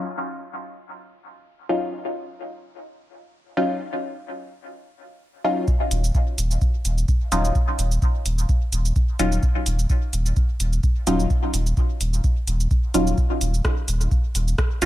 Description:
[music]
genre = dub techno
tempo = 128 BPM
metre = 4/4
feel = swing 54% on 16ths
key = Eb minor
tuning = A4 = 439 Hz
[part]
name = filtered dub chord stab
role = stabs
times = 0.0-14.9 s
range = Gb3 to F4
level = -26 LUFS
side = left 1 dB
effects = chorus, phaser, sidechain pumping, dub echo
[part]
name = booming analog drum machine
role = drums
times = 5.7-14.9 s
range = cabasa, hi-hat, rim click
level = -30 LUFS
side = right 2 dB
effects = none
[part]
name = electronic kick drum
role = drums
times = 5.7-14.7 s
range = none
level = -21 LUFS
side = equal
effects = none
[part]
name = warm sub bass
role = bass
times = 5.9-14.9 s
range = Eb1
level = -21 LUFS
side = equal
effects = sidechain pumping
[sound]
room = light reverb, digital ambience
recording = dark, warm production, low-pass filter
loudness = -20 LUFS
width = side -15 dB against mid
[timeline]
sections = 0.0-5.7 A section; 5.7-14.9 B section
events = filter sweep 0.0-5.7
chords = 0.0 Ebm9; 5.7 N.C.

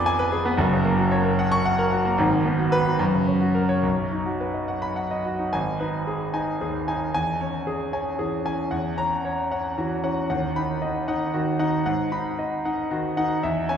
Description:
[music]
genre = classical, virtuoso piano study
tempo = 76 BPM (dotted quarters)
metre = 6/8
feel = rubato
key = unclear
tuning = A4 = 439 Hz
[part]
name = clear concert grand piano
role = solo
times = 0.0-13.8 s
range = F1 to D6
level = -21 LUFS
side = equal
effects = none
[sound]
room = wet concert hall reverb, RT60 2.0 s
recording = heard from further back in the room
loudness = -21 LUFS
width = side -8 dB against mid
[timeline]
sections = 0.0-5.5 A section; 5.5-13.8 B section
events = none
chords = 0.0 Fdim7; 0.6 F#; 2.2 G#m7; 3.0 F#; 3.8 B; 5.5 G#m; 7.1 C#m/E; 8.7 F#7/E; 10.3 B/D#; 11.9 G#m7

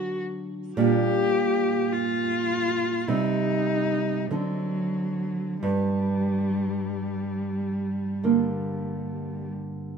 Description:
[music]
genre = romantic duo for cello and classical guitar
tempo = 45-53 BPM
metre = 4/4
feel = rubato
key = G minor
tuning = A4 = 441 Hz
[part]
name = dark cello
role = melody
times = 0.0-9.5 s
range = F#3 to G4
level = -27 LUFS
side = left 3 dB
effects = none
[part]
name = nylon-string guitar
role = accompaniment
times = 0.0-10.0 s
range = G2 to D4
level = -26 LUFS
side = right 4 dB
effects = none
[sound]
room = light reverb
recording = minimal, uncompressed stereo recording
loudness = -24 LUFS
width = side -6 dB against mid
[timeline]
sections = 0.0-10.0 A section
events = none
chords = 0.0 D; 0.8 Gm/Bb; 3.1 Cm; 4.3 D7; 5.6 Gm

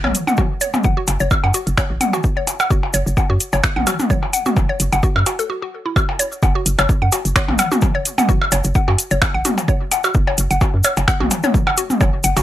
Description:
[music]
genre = minimal techno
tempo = 129 BPM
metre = 4/4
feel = swing 55% on 16ths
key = F# minor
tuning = A4 = 442 Hz
[part]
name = mallet-like synth pluck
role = riff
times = 0.0-12.4 s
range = E4 to F#5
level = -22 LUFS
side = equal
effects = chorus, cassette tape, sidechain pumping, dub echo
[part]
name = hollow knocking FM bass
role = bass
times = 0.0-12.4 s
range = F#1 to F#2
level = -19 LUFS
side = equal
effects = sidechain pumping
[part]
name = electronic toms and percussion blips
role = percussion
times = 0.0-12.4 s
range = none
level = -20 LUFS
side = left 1 dB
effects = none
[part]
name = garage drum kit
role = drums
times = 0.1-12.4 s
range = finger snaps, hi-hat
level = -20 LUFS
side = right 1 dB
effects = none
[part]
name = cabasa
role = percussion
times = 0.1-12.4 s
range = none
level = -26 LUFS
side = left 2 dB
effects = none
[part]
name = electronic kick drum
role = drums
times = 0.4-12.1 s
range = none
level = -18 LUFS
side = equal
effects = none
[sound]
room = little or no reverb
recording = none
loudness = -15 LUFS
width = side -13 dB against mid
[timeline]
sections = 0.0-6.0 A section; 6.0-12.4 B section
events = break 5.5-6.0; drop 6.0-12.4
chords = none

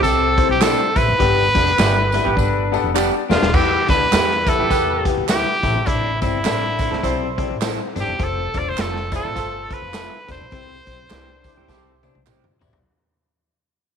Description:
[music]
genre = uptempo 1960s-style soul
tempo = 103 BPM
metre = 4/4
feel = swing 60% on 8ths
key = C major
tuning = A4 = 440 Hz
[part]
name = bright trumpet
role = melody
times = 0.0-12.2 s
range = E4 to D5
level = -20 LUFS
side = right 1 dB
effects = tape echo
[part]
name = warm horn section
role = second line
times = 0.0-0.3, 4.5-12.1 s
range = G3 to C5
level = -27 LUFS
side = right 12 dB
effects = none
[part]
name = warm grand piano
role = accompaniment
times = 0.0-12.8 s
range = G2 to D5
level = -26 LUFS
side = left 11 dB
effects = none
[part]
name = electric guitar through a small old amp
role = riff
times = 0.0-12.8 s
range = C4 to G4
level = -27 LUFS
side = left 12 dB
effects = none
[part]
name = upright bass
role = bass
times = 0.0-12.8 s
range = Eb1 to F2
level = -24 LUFS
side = right 1 dB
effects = none
[part]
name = raw garage drum kit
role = drums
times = 0.0-12.8 s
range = crash cymbal, hi-hat, kick drum, snare drum, toms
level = -22 LUFS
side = right 1 dB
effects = none
[part]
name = tambourine and handclaps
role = percussion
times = 0.0-12.7 s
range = none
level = -31 LUFS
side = right 14 dB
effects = none
[part]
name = electric guitar through a small old amp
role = stabs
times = 0.6-12.4 s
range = G3 to A4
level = -27 LUFS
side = right 13 dB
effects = warbly pitch drift
[sound]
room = light reverb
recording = 1960s-style stereo with parts hard left and right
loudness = -16 LUFS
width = side -7 dB against mid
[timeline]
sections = 0.0-3.5 A section; 3.5-12.9 B section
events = drum fill 2.4-3.5, 11.7-12.9; fade-out 3.5-12.9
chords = 0.0 C; 1.2 G; 3.5 Em; 5.6 Am; 8.2 F; 10.5 C

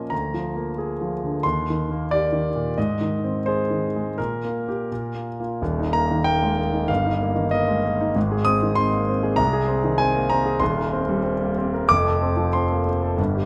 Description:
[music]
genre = classical, romantic character piece for solo piano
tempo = 82-100 BPM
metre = 2/4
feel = rubato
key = Eb major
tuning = A4 = 442 Hz
[part]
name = warm concert grand piano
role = solo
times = 0.0-13.5 s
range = Eb1 to Eb6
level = -23 LUFS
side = equal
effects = none
[sound]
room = wet recital hall reverb, RT60 1.6 s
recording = none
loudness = -23 LUFS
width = mono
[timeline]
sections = 0.0-5.6 A section; 5.6-13.5 B section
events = none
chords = 0.1 Bb7/D; 1.4 Eb; 2.8 Ab; 4.2 Gm/Bb; 4.9 Bb5; 5.6 Eb; 6.9 Eb/G; 8.2 Ab; 9.4 Ab/C; 10.6 Cm7/Eb; 11.9 F

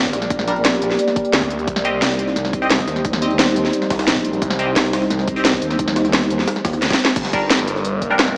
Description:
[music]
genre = dark technical drum and bass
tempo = 175 BPM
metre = 4/4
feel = straight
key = unclear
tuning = A4 = 440 Hz
[part]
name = deep dark ambient pad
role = sustained chords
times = 0.0-8.4 s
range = G3 to D5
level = -24 LUFS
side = equal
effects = chorus, built-in reverb, sidechain pumping
[part]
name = vowel-sweep wobble bass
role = bass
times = 0.0-7.0 s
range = G1 to Eb2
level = -26 LUFS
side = equal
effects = chorus, tube saturation
[part]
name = electronic kick drum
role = drums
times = 0.0-8.1 s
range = none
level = -27 LUFS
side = equal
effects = none
[part]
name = jungle sampler-style drum kit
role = drums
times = 0.0-8.4 s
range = hi-hat, snare drum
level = -29 LUFS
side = equal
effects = none
[part]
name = drum and bass drum kit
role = drums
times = 0.1-8.3 s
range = crash cymbal, hi-hat, snare drum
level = -21 LUFS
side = equal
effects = none
[part]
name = band-passed chord stab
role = stabs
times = 0.5-8.1 s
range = G3 to Eb5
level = -27 LUFS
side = equal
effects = phaser, tape echo
[part]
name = phased detuned saw bass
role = bass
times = 1.3-4.7, 7.2-8.4 s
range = G1 to D2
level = -27 LUFS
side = equal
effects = phaser, overdrive
[sound]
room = wet lush hall reverb, RT60 1.7 s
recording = dreamy mix soaked in reverb, small speaker sound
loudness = -18 LUFS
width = mono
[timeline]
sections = 0.0-7.2 A section; 7.2-8.4 A section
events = drop 0.0-7.2, 7.2-8.4; drum fill 6.8-7.2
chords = 0.0 Gm; 1.7 Cm; 7.2 Gm

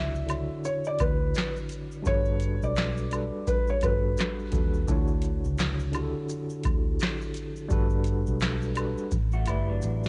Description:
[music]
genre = lo-fi hip hop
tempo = 85 BPM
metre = 4/4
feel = swing 61% on 16ths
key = D major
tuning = A4 = 440 Hz
[part]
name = felt-muted upright piano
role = melody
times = 0.0-4.8 s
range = B4 to E5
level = -34 LUFS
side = equal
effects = low-pass filter, cassette tape
[part]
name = tine electric piano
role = accompaniment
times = 0.0-10.1 s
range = D3 to D5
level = -35 LUFS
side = equal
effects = overdrive, fast tremolo, cassette tape, low-pass filter
[part]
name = vintage muted fingered electric bass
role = bass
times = 0.0-10.1 s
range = G1 to Eb2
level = -32 LUFS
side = equal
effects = none
[part]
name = booming analog drum machine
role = drums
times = 0.2-10.1 s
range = handclaps, hi-hat, kick drum, shaker, snare drum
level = -31 LUFS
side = equal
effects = cassette tape
[part]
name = maracas and woodblock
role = percussion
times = 0.3-10.0 s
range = none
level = -41 LUFS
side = equal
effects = none
[part]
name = electric guitar through a small old amp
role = second line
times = 9.3-10.1 s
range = F#3 to F#4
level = -37 LUFS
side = equal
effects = lush chorus, low-pass filter, cassette tape, analog delay
[sound]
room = little or no reverb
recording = home recording on cassette, nothing above 10.7 kHz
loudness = -28 LUFS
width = mono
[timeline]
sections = 0.0-10.1 A section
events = drum fill 9.1-10.1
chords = 0.0 Dmaj9; 2.1 Gmaj9; 4.9 Dmaj9; 7.7 Gmaj9; 9.1 A9sus4

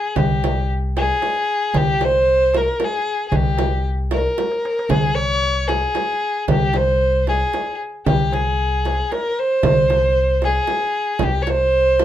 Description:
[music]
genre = Arabic maqam ensemble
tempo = 114 BPM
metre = 3/4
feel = straight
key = C maqam hijaz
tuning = A4 = 442 Hz
[part]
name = dark violin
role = melody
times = 0.0-12.0 s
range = G4 to Db5+24c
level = -18 LUFS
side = equal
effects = none
[part]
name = upright bass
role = bass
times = 0.2-12.0 s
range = C2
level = -22 LUFS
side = left 1 dB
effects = none
[part]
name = darbuka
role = percussion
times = 0.2-11.0 s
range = none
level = -24 LUFS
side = right 1 dB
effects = none
[part]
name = frame drum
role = percussion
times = 0.2-12.0 s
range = none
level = -25 LUFS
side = right 5 dB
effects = none
[sound]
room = moderate studio reverb, RT60 0.5 s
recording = minimal, uncompressed stereo recording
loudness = -16 LUFS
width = side -11 dB against mid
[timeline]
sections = 0.0-11.2 A section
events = drum fill 4.4-4.9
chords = none

